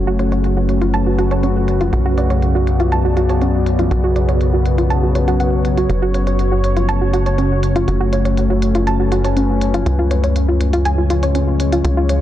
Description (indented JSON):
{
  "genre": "melodic techno",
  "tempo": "121 BPM",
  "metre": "4/4",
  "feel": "straight",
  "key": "F# harmonic minor",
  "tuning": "A4 = 441 Hz",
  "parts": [
    { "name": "deep dark ambient pad", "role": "sustained chords", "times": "0.0-12.2 s", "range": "G#3 to D5", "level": "-20 LUFS", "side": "left 2 dB", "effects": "chorus, built-in reverb" },
    { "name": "soft round pluck", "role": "arpeggios", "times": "0.0-12.2 s", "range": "C#4 to A5", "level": "-20 LUFS", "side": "right 1 dB", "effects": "chorus, digital delay" },
    { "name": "tight sequencer bass", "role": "bass", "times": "0.0-12.2 s", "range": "F#1 to C#2", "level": "-18 LUFS", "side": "equal", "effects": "none" },
    { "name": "analog drone", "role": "drone", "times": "0.0-12.2 s", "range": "F#2 to C#3", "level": "-22 LUFS", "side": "left 1 dB", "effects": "chorus" },
    { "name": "electronic hi-hat", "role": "drums", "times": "0.2-12.2 s", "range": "none", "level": "-32 LUFS", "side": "equal", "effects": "low-pass filter on hats, low-pass filter on snare" }
  ],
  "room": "light reverb",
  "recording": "dense, heavily limited modern master",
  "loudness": "-14 LUFS",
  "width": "side -12 dB against mid",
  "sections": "0.0-12.2 A section",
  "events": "none",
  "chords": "0.0 F#m; 1.9 Bm; 5.9 F#m; 9.9 C#"
}